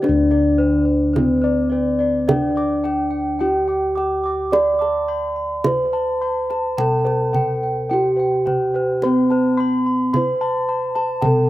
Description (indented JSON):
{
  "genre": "Javanese gamelan",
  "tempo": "53 BPM",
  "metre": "4/4",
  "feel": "straight",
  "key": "unclear",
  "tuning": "A4 = 440 Hz",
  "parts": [
    { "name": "gamelan-type bronze metallophone", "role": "melody", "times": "0.0-11.5 s", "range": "C4-45c to D5", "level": "-19 LUFS", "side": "equal", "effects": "slapback echo" },
    { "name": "gamelan-type bossed gongs", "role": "arpeggios", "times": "0.0-11.5 s", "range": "C5-45c to D6", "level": "-26 LUFS", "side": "left 4 dB", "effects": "slapback echo" },
    { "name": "gamelan-type bronze metallophone", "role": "arpeggios", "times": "0.0-11.5 s", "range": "C5-45c to D6", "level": "-27 LUFS", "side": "right 3 dB", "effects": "slapback echo" },
    { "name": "gamelan-type bossed gongs", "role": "bass", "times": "0.0-11.5 s", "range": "D2 to D5", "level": "-24 LUFS", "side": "equal", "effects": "none" },
    { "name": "kendang", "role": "percussion", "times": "0.0-11.5 s", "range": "none", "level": "-23 LUFS", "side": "right 3 dB", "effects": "none" }
  ],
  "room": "little or no reverb",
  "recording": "recorded outdoors, with no room sound",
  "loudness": "-17 LUFS",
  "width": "side -16 dB against mid",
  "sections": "0.0-11.5 A section",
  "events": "none",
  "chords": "none"
}